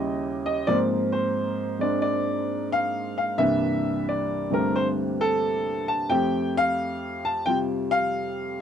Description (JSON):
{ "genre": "solo jazz", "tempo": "88 BPM", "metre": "4/4", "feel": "swing 68% on 8ths", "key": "F major", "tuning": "A4 = 440 Hz", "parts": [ { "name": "warm baby grand piano", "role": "solo", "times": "0.0-8.6 s", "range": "C2 to A5", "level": "-23 LUFS", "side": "equal", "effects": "none" } ], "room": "light reverb", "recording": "dry, close 1970s-style studio recording", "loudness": "-23 LUFS", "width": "side -8 dB against mid", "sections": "0.0-8.6 A section", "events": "none", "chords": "0.0 Eb7b9; 0.7 Ab69; 3.4 C13; 6.1 Fadd9" }